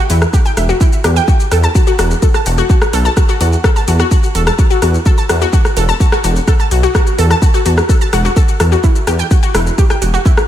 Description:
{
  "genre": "melodic techno",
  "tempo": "127 BPM",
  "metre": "4/4",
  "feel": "straight",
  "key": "unclear",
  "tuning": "A4 = 441 Hz",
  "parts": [
    { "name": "analog pluck", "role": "arpeggios", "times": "0.0-10.3 s", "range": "E4 to A5", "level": "-17 LUFS", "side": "left 2 dB", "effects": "chorus, sidechain pumping, tape echo" },
    { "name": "dark detuned saw bass", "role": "bass", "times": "0.1-10.2 s", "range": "E1 to E2", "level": "-13 LUFS", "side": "equal", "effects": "sidechain pumping" },
    { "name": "house drum kit", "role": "drums", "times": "0.1-10.5 s", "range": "hi-hat, rim click, shaker", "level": "-19 LUFS", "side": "equal", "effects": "small room ambience" },
    { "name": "electronic kick drum", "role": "drums", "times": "0.3-10.4 s", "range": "none", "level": "-11 LUFS", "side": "equal", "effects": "small room ambience" }
  ],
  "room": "light reverb",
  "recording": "none",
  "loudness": "-10 LUFS",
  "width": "side -11 dB against mid",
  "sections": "0.0-10.5 A section",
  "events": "none",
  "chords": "0.0 Em; 1.3 F#m7/E; 8.8 Em"
}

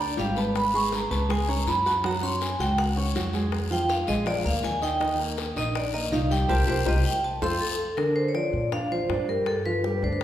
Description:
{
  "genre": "Afro-Cuban jazz",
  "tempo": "162 BPM",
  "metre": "4/4",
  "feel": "straight",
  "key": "unclear",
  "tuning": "A4 = 438 Hz",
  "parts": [
    { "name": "vibraphone with medium hard mallets", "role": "melody", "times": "0.0-10.2 s", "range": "A4 to Db6", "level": "-27 LUFS", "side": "equal", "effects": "none" },
    { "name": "warm concert grand piano", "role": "accompaniment", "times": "0.0-10.2 s", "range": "D3 to Gb6", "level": "-29 LUFS", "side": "right 1 dB", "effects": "none" },
    { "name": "upright bass", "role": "bass", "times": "0.0-10.2 s", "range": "Ab1 to Bb2", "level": "-28 LUFS", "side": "equal", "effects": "none" },
    { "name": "bongos", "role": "percussion", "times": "0.2-10.2 s", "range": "none", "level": "-36 LUFS", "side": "left 5 dB", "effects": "none" },
    { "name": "guiro", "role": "percussion", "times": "0.2-7.5 s", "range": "none", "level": "-36 LUFS", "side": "left 6 dB", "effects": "none" }
  ],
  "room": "wet recital hall reverb, RT60 1.6 s",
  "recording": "recorded in a church or concert hall",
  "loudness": "-23 LUFS",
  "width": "side -12 dB against mid",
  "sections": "0.0-8.0 A section; 8.0-10.2 B section",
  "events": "vibraphone solo 0.0-8.0; band accent 6.5-8.0; drum fill 7.2-8.0",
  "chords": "0.0 G5; 0.6 Abm; 1.3 Db5; 2.0 Gbsus2; 3.5 Fmadd11; 4.3 Bb; 5.0 Eb; 6.5 C5; 7.2 F; 8.0 Bb69; 9.5 G7"
}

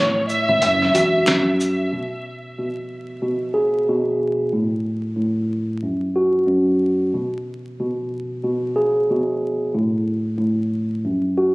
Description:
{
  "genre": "hip hop, boom-bap hip-hop",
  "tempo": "92 BPM",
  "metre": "4/4",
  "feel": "swing 60% on 16ths",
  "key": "unclear",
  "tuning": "A4 = 442 Hz",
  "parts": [
    { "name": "warm symphonic violin section", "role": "melody", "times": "0.0-1.4 s", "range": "C#5 to E5", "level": "-20 LUFS", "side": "equal", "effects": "high-pass filter, low-pass filter, tape echo" },
    { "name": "mellow tine electric piano", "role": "accompaniment", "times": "0.0-11.5 s", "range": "F#2 to G#4", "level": "-19 LUFS", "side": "equal", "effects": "cassette tape, high-pass filter, low-pass filter" },
    { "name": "trip hop sampler-style drum kit", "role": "drums", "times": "0.3-1.8 s", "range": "hi-hat, shaker, snare drum", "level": "-22 LUFS", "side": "equal", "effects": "none" },
    { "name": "deep dub fingered electric bass", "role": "bass", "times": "0.5-1.2 s", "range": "E1 to G#1", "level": "-23 LUFS", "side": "equal", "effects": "none" },
    { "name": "finger snap", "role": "percussion", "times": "1.3-1.4 s", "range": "none", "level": "-32 LUFS", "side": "equal", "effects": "none" }
  ],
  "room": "light reverb",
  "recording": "recorded on a phone in the room, club ambience, vinyl crackle",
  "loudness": "-18 LUFS",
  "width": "side -24 dB against mid",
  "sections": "0.0-1.9 A section; 1.9-11.5 B section",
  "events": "break 0.0-1.9",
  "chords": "0.0 Amaj7; 0.6 Esus2; 1.9 G#m/B; 4.5 N.C.; 7.1 G#m/B; 9.7 N.C."
}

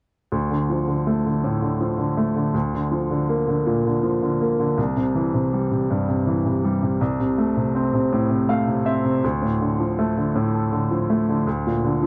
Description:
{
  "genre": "pop",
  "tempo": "54 BPM (dotted quarters)",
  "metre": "6/8",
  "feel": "straight",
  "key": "D minor",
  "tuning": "A4 = 440 Hz",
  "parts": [
    { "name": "clear baby grand piano", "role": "solo", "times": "0.3-12.1 s", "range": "C2 to F5", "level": "-22 LUFS", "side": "equal", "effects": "none" }
  ],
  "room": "light reverb",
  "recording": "dry, close 1970s-style studio recording",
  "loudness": "-22 LUFS",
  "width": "mono",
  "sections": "0.3-9.2 A section; 9.2-12.1 B section",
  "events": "grand piano fill 8.1-9.2",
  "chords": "0.3 Dm; 2.5 Bb/D; 4.8 C; 7.0 C6; 9.2 Dm; 11.5 Bb/D"
}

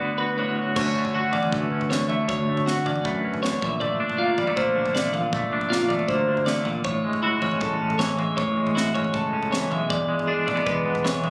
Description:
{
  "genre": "math rock and midwest emo",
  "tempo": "158 BPM",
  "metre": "4/4",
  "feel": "straight",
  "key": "D lydian",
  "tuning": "A4 = 440 Hz",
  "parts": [
    { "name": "twangy electric guitar", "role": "accompaniment", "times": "0.0-11.3 s", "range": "D2 to F#4", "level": "-28 LUFS", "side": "equal", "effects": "tremolo" },
    { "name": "twelve-string electric guitar", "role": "arpeggios", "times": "0.0-11.3 s", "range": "E4 to F5", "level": "-28 LUFS", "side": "equal", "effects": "spring reverb, slapback echo" },
    { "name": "picked electric bass", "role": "bass", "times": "0.8-11.3 s", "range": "E1 to F#2", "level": "-32 LUFS", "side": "equal", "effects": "none" },
    { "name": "crisp fusion drum kit", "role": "drums", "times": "0.8-11.3 s", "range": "crash cymbal, kick drum, snare drum, toms", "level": "-33 LUFS", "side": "equal", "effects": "none" }
  ],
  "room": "light reverb",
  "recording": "recorded on a phone in the room, club reverb, compression",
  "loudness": "-24 LUFS",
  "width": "mono",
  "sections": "0.8-11.3 A section",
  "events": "break 0.0-0.8",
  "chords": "0.0 D6; 0.8 Dmaj7; 3.6 Bbmaj7; 6.8 Amaj7; 9.9 E7"
}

